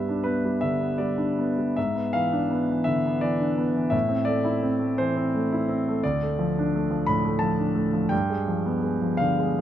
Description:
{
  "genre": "classical, romantic character piece for solo piano",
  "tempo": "57 BPM (dotted quarters)",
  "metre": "6/8",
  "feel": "uneven beats, rubato",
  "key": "unclear",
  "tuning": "A4 = 440 Hz",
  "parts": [
    { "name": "clear concert grand piano", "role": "solo", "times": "0.0-9.6 s", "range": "D2 to B5", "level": "-22 LUFS", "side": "equal", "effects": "none" }
  ],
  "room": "light reverb",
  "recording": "close, detailed microphones",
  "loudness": "-22 LUFS",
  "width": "side -11 dB against mid",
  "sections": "0.0-9.6 A section",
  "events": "none",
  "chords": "0.0 G; 1.8 E7/G#; 3.9 Am; 6.0 Dm; 8.1 G7b9"
}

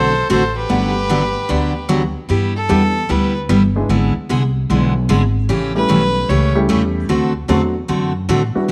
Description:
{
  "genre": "country, western swing",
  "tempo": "150 BPM",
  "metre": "4/4",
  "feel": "swing 67% on 8ths",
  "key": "G major",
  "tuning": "A4 = 441 Hz",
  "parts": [
    { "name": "rich fiddle", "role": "melody", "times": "0.0-6.6 s", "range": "A4 to C#5", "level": "-23 LUFS", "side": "equal", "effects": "none" },
    { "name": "clear fiddle", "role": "second line", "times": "0.0-1.9 s", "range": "G4 to A4", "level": "-28 LUFS", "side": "equal", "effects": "slapback echo" },
    { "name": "dark upright piano", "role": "accompaniment", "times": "0.0-8.7 s", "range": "F#3 to F#5", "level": "-23 LUFS", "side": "equal", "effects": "none" },
    { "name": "picked steel-string acoustic guitar", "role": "accompaniment", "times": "0.0-8.7 s", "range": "C#3 to A4", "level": "-20 LUFS", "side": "equal", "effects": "none" },
    { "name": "upright bass", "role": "bass", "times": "0.0-8.7 s", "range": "G1 to A2", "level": "-22 LUFS", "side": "equal", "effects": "none" }
  ],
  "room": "light reverb",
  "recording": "none",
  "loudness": "-16 LUFS",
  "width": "mono",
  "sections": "0.0-2.3 A section; 2.3-8.7 B section",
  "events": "fiddle solo 2.3-8.7",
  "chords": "0.0 D9; 0.7 Gmaj9; 2.3 G6; 3.9 E7/G#; 5.5 A7; 7.1 D7"
}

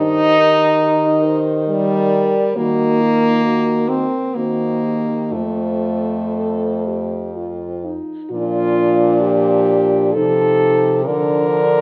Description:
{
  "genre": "classical, lyrical piece for horn quartet",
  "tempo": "58-70 BPM",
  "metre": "3/4",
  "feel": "rubato",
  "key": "Bb major",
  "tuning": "A4 = 440 Hz",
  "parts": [
    { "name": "mellow French horn", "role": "melody", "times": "0.0-11.8 s", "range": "F4 to D5", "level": "-22 LUFS", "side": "equal", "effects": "none" },
    { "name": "dark French horn", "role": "second line", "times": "0.0-11.8 s", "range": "D4 to Bb4", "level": "-26 LUFS", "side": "equal", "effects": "none" },
    { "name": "mellow French horn", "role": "accompaniment", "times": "0.0-11.8 s", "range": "F3 to Eb4", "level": "-20 LUFS", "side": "equal", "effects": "none" },
    { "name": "warm French horn", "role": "bass", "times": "0.0-11.8 s", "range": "F2 to Eb3", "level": "-24 LUFS", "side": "equal", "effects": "none" }
  ],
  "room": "moderate recital hall reverb, RT60 1.8 s",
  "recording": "none",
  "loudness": "-17 LUFS",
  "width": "mono",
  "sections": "0.0-8.3 A section; 8.3-11.8 B section",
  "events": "none",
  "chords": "0.0 Ebmaj7; 2.6 Ebm; 4.4 Cm7b5/Eb; 5.3 F; 8.3 Bb; 10.2 F7/C; 11.1 Bb/D"
}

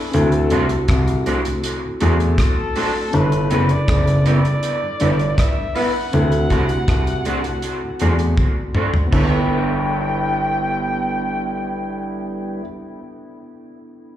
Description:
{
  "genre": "lovers rock reggae",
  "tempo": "80 BPM",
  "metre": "4/4",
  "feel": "straight",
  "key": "G major",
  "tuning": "A4 = 439 Hz",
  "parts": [
    { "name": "mellow tine electric piano", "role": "accompaniment", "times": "0.0-14.2 s", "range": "B3 to A4", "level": "-27 LUFS", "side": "left 2 dB", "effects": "medium stereo tremolo, slapback echo" },
    { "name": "warm flugelhorn", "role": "melody", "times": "0.1-12.6 s", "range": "Ab4 to G5", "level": "-25 LUFS", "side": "left 1 dB", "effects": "tape echo, slapback echo" },
    { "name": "dark baby grand piano", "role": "bass", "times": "0.1-12.6 s", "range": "F#1 to E2", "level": "-19 LUFS", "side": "equal", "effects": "none" },
    { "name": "damped 70s drum kit", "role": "drums", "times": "0.1-9.3 s", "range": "crash cymbal, hi-hat, kick drum, rim click, toms", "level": "-21 LUFS", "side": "equal", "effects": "none" },
    { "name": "tonewheel organ", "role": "accompaniment", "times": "0.3-12.6 s", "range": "D2 to E4", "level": "-32 LUFS", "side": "equal", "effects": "overdrive, slow rotary speaker, dub echo, slapback echo" },
    { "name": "electric guitar through a small old amp", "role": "stabs", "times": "0.5-12.7 s", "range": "A3 to C5", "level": "-24 LUFS", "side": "right 2 dB", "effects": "analog chorus, dub echo, slapback echo" }
  ],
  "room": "light reverb, studio reverb",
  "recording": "live gig heard through the venue's PA, club reverb",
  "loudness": "-16 LUFS",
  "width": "side -12 dB against mid",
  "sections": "0.0-9.1 A section; 9.1-12.1 B section",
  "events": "drum fill 8.4-9.1",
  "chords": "0.1 D7; 3.1 G6; 6.1 D7; 9.1 G6"
}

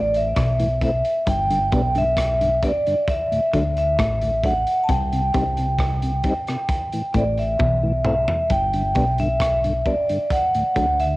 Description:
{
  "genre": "roots reggae",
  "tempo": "66 BPM",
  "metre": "4/4",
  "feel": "straight",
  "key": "G major",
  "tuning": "A4 = 439 Hz",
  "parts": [
    { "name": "vibraphone with medium hard mallets", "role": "melody", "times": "0.0-11.2 s", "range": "D5 to A5", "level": "-21 LUFS", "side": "equal", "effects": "dub echo" },
    { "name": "semi-hollow electric guitar", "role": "riff", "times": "0.0-11.0 s", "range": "G2 to D3", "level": "-27 LUFS", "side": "left 3 dB", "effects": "cassette tape" },
    { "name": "deep dub fingered electric bass", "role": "bass", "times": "0.0-11.2 s", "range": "G1 to D2", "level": "-24 LUFS", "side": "equal", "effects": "transformer saturation" },
    { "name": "crunchy breakbeat drum kit", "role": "drums", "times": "0.1-11.2 s", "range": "hi-hat, kick drum, rim click, toms", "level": "-26 LUFS", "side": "equal", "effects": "cassette tape" },
    { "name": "mellow tonewheel organ", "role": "accompaniment", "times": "0.6-10.9 s", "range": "D2 to E4", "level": "-26 LUFS", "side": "left 1 dB", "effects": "overdrive, chorus vibrato, slow rotary speaker, cassette tape" }
  ],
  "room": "light reverb",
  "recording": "home recording on cassette",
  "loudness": "-18 LUFS",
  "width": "side -19 dB against mid",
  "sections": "0.0-11.2 A section",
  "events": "drum fill 7.6-8.5",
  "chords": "0.0 Am; 1.3 G; 3.1 D; 4.9 Cm; 6.7 Am; 8.5 G; 10.3 D"
}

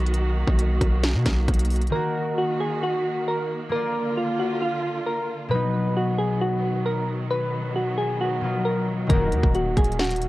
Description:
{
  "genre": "hip hop, trap",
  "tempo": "134 BPM",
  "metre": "4/4",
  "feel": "half-time",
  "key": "Eb harmonic minor",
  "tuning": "A4 = 440 Hz",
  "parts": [
    { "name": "warm symphonic string section", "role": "sustained chords", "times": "0.0-10.3 s", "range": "D3 to F#4", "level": "-31 LUFS", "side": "right 2 dB", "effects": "none" },
    { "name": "hard-hitting 808-style bass", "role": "bass", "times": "0.0-1.9, 9.1-10.3 s", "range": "Eb1 to B2", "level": "-23 LUFS", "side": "equal", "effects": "none" },
    { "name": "trap drum kit", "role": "drums", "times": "0.1-1.9, 9.1-10.3 s", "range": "hi-hat, kick drum, snare drum", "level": "-22 LUFS", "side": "equal", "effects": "none" },
    { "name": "soft electric-piano-like synth keys", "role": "melody", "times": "1.9-10.3 s", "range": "F4 to B4", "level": "-25 LUFS", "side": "right 1 dB", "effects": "chorus" },
    { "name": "concert harp", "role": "accompaniment", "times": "1.9-10.3 s", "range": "B2 to D5", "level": "-27 LUFS", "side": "left 2 dB", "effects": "none" },
    { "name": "analog synth brass", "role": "stabs", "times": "9.1-9.3 s", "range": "Bb1 to Eb3", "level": "-30 LUFS", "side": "left 1 dB", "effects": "chorus, digital delay" }
  ],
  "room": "little or no reverb",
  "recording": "worn, warbling old tape, cassette tape, warbly pitch drift",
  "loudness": "-21 LUFS",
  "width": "side -17 dB against mid",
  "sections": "0.0-1.9 A section; 1.9-10.3 B section",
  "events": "break 0.0-1.9",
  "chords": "0.0 B; 1.9 Ebm; 3.7 Bb; 5.5 B; 9.1 Ebm"
}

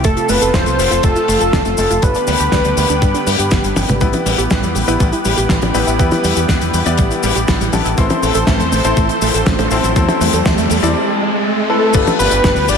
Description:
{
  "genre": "italo disco",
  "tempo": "121 BPM",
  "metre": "4/4",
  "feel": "straight",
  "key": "unclear",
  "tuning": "A4 = 440 Hz",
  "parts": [
    { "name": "wide unison lead", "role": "melody", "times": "0.0-3.5, 11.7-12.8 s", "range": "A4 to D5", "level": "-16 LUFS", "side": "equal", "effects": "cassette tape, digital delay" },
    { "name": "lush unison pad", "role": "sustained chords", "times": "0.0-12.8 s", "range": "C3 to C5", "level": "-20 LUFS", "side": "equal", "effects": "chorus, vintage 12-bit sampler grit" },
    { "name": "wide unison pluck", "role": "arpeggios", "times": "0.0-10.9 s", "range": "G3 to B4", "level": "-22 LUFS", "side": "right 4 dB", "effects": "tape echo" },
    { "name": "fingered electric bass", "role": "bass", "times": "0.0-12.8 s", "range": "F1 to G2", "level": "-20 LUFS", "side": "equal", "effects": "none" },
    { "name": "damped 70s drum kit", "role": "drums", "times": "0.0-12.8 s", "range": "cabasa, crash cymbal, hi-hat, snare drum, toms", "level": "-19 LUFS", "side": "left 2 dB", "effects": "studio reverb, gated reverb" },
    { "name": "electronic kick drum", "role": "drums", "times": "0.0-12.5 s", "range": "none", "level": "-17 LUFS", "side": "equal", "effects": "overdrive, studio reverb" },
    { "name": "bright grand piano", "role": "stabs", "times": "4.0-12.8 s", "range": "B3 to D5", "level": "-20 LUFS", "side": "left 5 dB", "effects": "tape echo" },
    { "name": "riser", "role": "sound effects", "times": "7.2-11.9 s", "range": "none", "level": "-22 LUFS", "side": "right 1 dB", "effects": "none" }
  ],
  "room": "moderate lush hall reverb, RT60 2.0 s, small room ambience",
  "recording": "none",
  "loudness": "-12 LUFS",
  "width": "side -6 dB against mid",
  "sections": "0.0-4.0 A section; 4.0-11.9 B section",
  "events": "drum fill 3.8; riser 7.2-11.9",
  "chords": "0.0 F; 2.0 G; 4.0 Em/A; 8.0 Am; 11.9 G7"
}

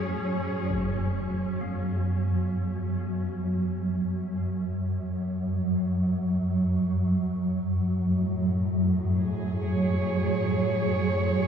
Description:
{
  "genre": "dark ambient drone",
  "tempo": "free time",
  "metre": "none",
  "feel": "none",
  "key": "F# minor",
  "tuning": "A4 = 440 Hz",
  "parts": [
    { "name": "dark studio cello section", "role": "sustained chords", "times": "0.0-0.7, 8.1-11.5 s", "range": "A2 to C#5", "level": "-32 LUFS", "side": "equal", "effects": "shimmer reverb" },
    { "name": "swarming drone", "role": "drone", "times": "0.0-11.5 s", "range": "F#2 to F#3", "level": "-25 LUFS", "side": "right 1 dB", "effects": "built-in reverb" },
    { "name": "impact", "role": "percussion", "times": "0.7-0.9 s", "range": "none", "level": "-41 LUFS", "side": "equal", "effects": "none" },
    { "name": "gamelan-type bronze metallophone", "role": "arpeggios", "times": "1.6-7.1 s", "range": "B3", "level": "-48 LUFS", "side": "equal", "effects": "none" }
  ],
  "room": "wet huge ambient reverb, RT60 8.8 s",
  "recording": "dark, warm production",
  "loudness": "-25 LUFS",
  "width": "side -8 dB against mid",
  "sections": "0.7-11.5 A section",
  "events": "filter sweep on synth drone 0.7-11.5",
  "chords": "0.0 F#madd9"
}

